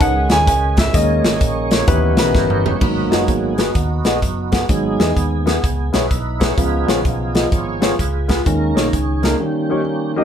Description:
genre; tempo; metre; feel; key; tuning
uptempo gospel; 128 BPM; 4/4; swing 64% on 8ths; G# minor; A4 = 436 Hz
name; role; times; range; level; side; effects
warm concert grand piano; accompaniment; 0.0-10.2 s; G#2 to G#5; -19 LUFS; left 2 dB; none
tonewheel organ; sustained chords; 0.0-10.2 s; D#3 to C#5; -22 LUFS; right 5 dB; slow rotary speaker, overdrive, chorus vibrato
fingered electric bass; bass; 0.0-9.3 s; F#1 to E2; -21 LUFS; equal; none
modern studio drum kit; drums; 0.0-9.3 s; crash cymbal, hi-hat, kick drum, snare drum, toms; -18 LUFS; equal; none
room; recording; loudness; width
light reverb; band playing live in one room; -14 LUFS; side -8 dB against mid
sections
0.0-2.8 A section; 2.8-10.2 B section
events
grand piano solo 0.0-2.8; drum fill 2.3-2.8; tonewheel organ solo 2.8-10.2; break 9.4-10.2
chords
0.0 Amaj9#11 (rootless); 0.9 D#7sus4; 1.9 D#7b9b13; 2.8 G#m7; 4.7 Emaj7/G#; 6.6 C#7; 8.5 D#7sus4; 9.4 D#7

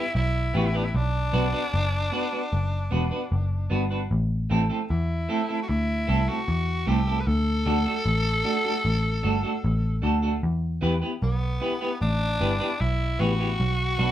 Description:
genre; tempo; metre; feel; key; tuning
roots reggae; 76 BPM; 4/4; straight; A dorian; A4 = 443 Hz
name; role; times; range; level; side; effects
breathy tenor saxophone; melody; 0.0-14.1 s; B3 to B4; -29 LUFS; left 1 dB; none
clean electric guitar; accompaniment; 0.0-14.1 s; A3 to B4; -27 LUFS; right 2 dB; none
vintage muted picked electric bass; bass; 0.2-14.1 s; E1 to E2; -24 LUFS; equal; none
room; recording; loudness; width
moderate studio ambience, RT60 0.5 s; band playing live in one room; -22 LUFS; side -12 dB against mid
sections
0.0-14.1 A section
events
none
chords
0.0 Em; 0.9 Bm; 4.1 Am; 7.3 D; 10.4 Em; 13.6 Bm

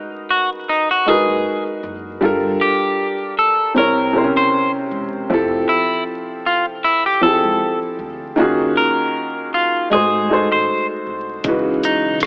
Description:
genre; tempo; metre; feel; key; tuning
lo-fi hip hop; 78 BPM; 4/4; swing 56% on 16ths; unclear; A4 = 440 Hz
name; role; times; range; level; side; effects
warm upright piano; accompaniment; 0.0-12.3 s; C3 to Db5; -18 LUFS; equal; cassette tape, low-pass filter
clean electric guitar; melody; 0.3-12.2 s; D#4 to C5; -17 LUFS; equal; low-pass filter
upright bass; bass; 1.3-11.8 s; E1 to D#2; -30 LUFS; equal; none
deep dark ambient pad; sustained chords; 12.0-12.3 s; C#3 to D#5; -37 LUFS; equal; none
lo-fi sampler-style drum kit; drums; 11.4-12.3 s; hi-hat, kick drum, rim click, shaker; -18 LUFS; equal; none
room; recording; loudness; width
moderate plate reverb, RT60 2.7 s; vinyl crackle, AM radio sound; -15 LUFS; side -33 dB against mid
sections
0.0-12.3 A section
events
none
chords
0.0 G#m7; 2.2 Gm9; 3.8 C7b9; 5.3 Fmaj9; 8.4 D#m11; 9.9 G#7b9; 11.4 C#m11

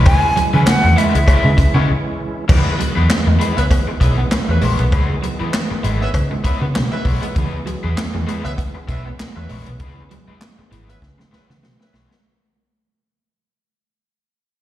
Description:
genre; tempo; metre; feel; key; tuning
funk; 98 BPM; 4/4; swing 56% on 16ths; C# minor; A4 = 442 Hz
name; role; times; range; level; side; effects
raw garage guitar; accompaniment; 0.0-12.2 s; G#3 to C#5; -25 LUFS; left 5 dB; overdrive, harmonic tremolo, slapback echo
bright tonewheel organ; sustained chords; 0.0-12.2 s; D#3 to E4; -28 LUFS; right 2 dB; overdrive, chorus vibrato, fast rotary speaker
vintage muted picked electric bass; bass; 0.0-12.1 s; G#1 to C#3; -17 LUFS; equal; none
breathy jazz flute; melody; 0.1-1.9 s; E5 to G#5; -19 LUFS; equal; slapback echo
swinging big-band drum kit; drums; 0.1-12.2 s; crash cymbal, handclaps, hi-hat, kick drum, snare drum; -18 LUFS; equal; none
cowbell; percussion; 0.1-6.9 s; none; -30 LUFS; left 2 dB; slapback echo
clean electric guitar; riff; 0.2-12.2 s; E3 to B3; -25 LUFS; right 4 dB; phaser, slapback echo
warm horn section; second line; 3.6-12.2 s; C#4 to E5; -29 LUFS; right 3 dB; slapback echo
room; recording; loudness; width
light reverb, small room ambience; live gig heard through the venue's PA, recital hall reverb; -14 LUFS; side -13 dB against mid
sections
0.0-2.5 A section; 2.5-12.2 B section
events
break 1.9-2.5; fade-out 2.5-12.2; drum fill 11.0-12.2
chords
0.0 C#m7

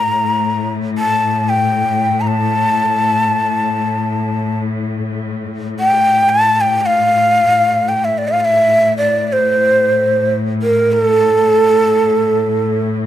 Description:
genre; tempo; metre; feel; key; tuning
Arabic maqam ensemble; free time; none; none; A maqam kurd; A4 = 440 Hz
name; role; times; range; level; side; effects
breathy ney; melody; 0.0-12.9 s; A4 to Bb5; -13 LUFS; equal; none
rich chamber cello section; drone; 0.0-13.1 s; A2; -20 LUFS; left 3 dB; none
room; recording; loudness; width
light reverb; close, detailed microphones; -12 LUFS; side -11 dB against mid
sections
0.0-13.1 A section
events
slowing down 9.3-13.1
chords
none

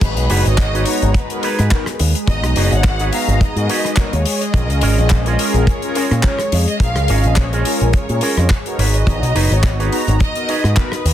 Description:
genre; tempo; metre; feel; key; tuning
nu-disco, nu disco; 106 BPM; 4/4; swing 55% on 16ths; G# dorian; A4 = 439 Hz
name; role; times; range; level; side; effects
warm symphonic violin section; melody; 0.0-11.1 s; B4 to F#5; -24 LUFS; equal; analog delay
mellow synth brass; accompaniment; 0.0-10.9 s; B3 to A#5; -23 LUFS; left 1 dB; chorus, phaser, cassette tape, sidechain pumping
lush unison pad; sustained chords; 0.0-11.1 s; G#3 to D#5; -27 LUFS; right 1 dB; chorus, sidechain pumping
picked electric bass with an envelope filter; bass; 0.0-11.1 s; F#1 to A#2; -16 LUFS; equal; none
damped 70s drum kit; drums; 0.0-11.1 s; crash cymbal, handclaps, hi-hat, rim click; -23 LUFS; left 3 dB; studio reverb, soft clipping on snare
kick drum; drums; 0.0-10.9 s; none; -16 LUFS; equal; studio reverb
electric guitar with an envelope filter; riff; 0.3-11.1 s; C#4 to B4; -24 LUFS; right 3 dB; analog chorus
room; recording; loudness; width
little or no reverb; dense, heavily limited modern master; -14 LUFS; side -11 dB against mid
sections
0.0-11.1 A section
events
none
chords
0.0 G#m7; 4.5 A#m7; 8.8 G#m7

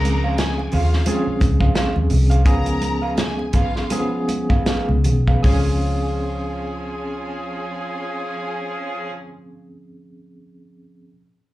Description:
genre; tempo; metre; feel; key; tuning
lush 1970s-style soul; 76-89 BPM; 4/4; swing 58% on 16ths; Db major; A4 = 442 Hz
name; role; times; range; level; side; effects
warm studio string section; second line; 0.0-9.1 s; Db4 to Bb5; -31 LUFS; equal; plate reverb, slapback echo
tine electric piano; accompaniment; 0.0-11.1 s; F3 to Ab4; -26 LUFS; equal; medium tremolo, plate reverb, slapback echo
electric guitar through a small old amp; riff; 0.0-9.2 s; Ab4 to Ab5; -29 LUFS; right 2 dB; slapback echo
vintage muted fingered electric bass; bass; 0.0-9.1 s; Cb2 to Eb2; -20 LUFS; equal; none
warm soul drum kit; drums; 0.0-5.7 s; hi-hat, kick drum, snare drum; -20 LUFS; equal; none
congas; percussion; 0.1-5.8 s; none; -29 LUFS; right 4 dB; slapback echo
clear horn section; stabs; 5.4-9.1 s; F3 to Ab4; -29 LUFS; equal; plate reverb, slapback echo
room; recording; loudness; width
light reverb; live gig heard through the venue's PA, club reverb; -18 LUFS; side -16 dB against mid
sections
0.0-5.4 A section; 5.4-8.6 B section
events
slowing down 0.0-5.4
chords
0.0 Dbmaj7; 2.5 Db7; 5.4 Dbmaj7

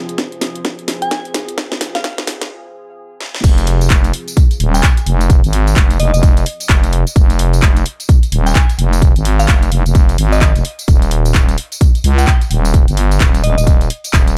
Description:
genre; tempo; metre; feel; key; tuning
bass house; 129 BPM; 4/4; swing 61% on 16ths; F minor; A4 = 435 Hz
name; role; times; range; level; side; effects
deep dark ambient pad; sustained chords; 0.0-3.4 s; F3 to Ab4; -34 LUFS; equal; chorus, built-in reverb, sidechain pumping
house drum kit; drums; 0.1-14.4 s; crash cymbal, handclaps, hi-hat, snare drum, tambourine; -23 LUFS; equal; none
electronic kick drum; drums; 0.2-14.2 s; none; -12 LUFS; equal; high-pass filter on kick, high-pass filter on room
glassy synth bell; melody; 1.0-13.6 s; Eb5 to Ab5; -26 LUFS; equal; chorus, tremolo, dub echo
growling FM bass; bass; 3.4-14.4 s; Eb1 to Db2; -16 LUFS; equal; tube saturation, sidechain pumping
room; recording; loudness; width
little or no reverb; high-pass filter; -13 LUFS; mono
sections
0.0-3.4 A section; 3.4-14.4 B section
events
build-up 0.0-3.4; drum fill 0.0-2.5, 3.2; filter sweep 0.0-3.4; break 2.5-3.4; drop 3.4-14.4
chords
0.0 Fm; 10.9 N.C.

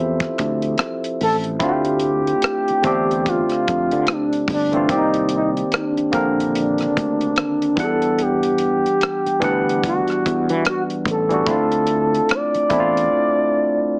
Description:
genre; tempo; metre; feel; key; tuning
R&B, neo-soul; 73 BPM; 4/4; swing 60% on 16ths; unclear; A4 = 440 Hz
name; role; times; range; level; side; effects
barky tine electric piano; accompaniment; 0.0-14.0 s; D3 to F#5; -21 LUFS; equal; overdrive
sustaining fretless electric bass; bass; 0.0-13.1 s; G1 to E3; -24 LUFS; equal; none
tight funk drum kit; drums; 0.2-13.1 s; hi-hat, kick drum, rim click; -24 LUFS; equal; none
expressive synth lead; melody; 1.2-14.0 s; D4 to D5; -19 LUFS; equal; chorus, slapback echo
room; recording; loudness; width
moderate small room reverb, RT60 0.6 s; heavily compressed radio sound, multiband compression, small speaker sound; -16 LUFS; side -39 dB against mid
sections
0.0-1.6 A section; 1.6-14.0 B section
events
tine electric piano solo 0.0-1.6; drums muted 13.1-14.0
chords
0.0 Dm9; 4.9 Cm9; 7.8 Em9; 11.5 Dm9

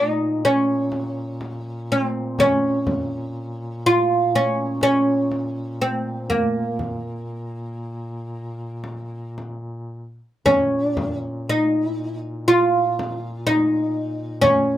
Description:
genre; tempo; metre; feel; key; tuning
caucasian folk, Caucasian lament; 54-64 BPM; 4/4; rubato; Bb minor; A4 = 440 Hz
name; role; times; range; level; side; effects
oud; melody; 0.0-14.8 s; Bb3 to F4; -19 LUFS; equal; none
mellow duduk; drone; 0.0-14.8 s; Bb2; -31 LUFS; equal; none
frame drum; percussion; 0.9-14.7 s; none; -30 LUFS; left 1 dB; none
room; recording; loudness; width
light reverb; rough home demo mix; -19 LUFS; side -12 dB against mid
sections
0.0-10.5 A section; 10.5-14.8 B section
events
none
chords
none

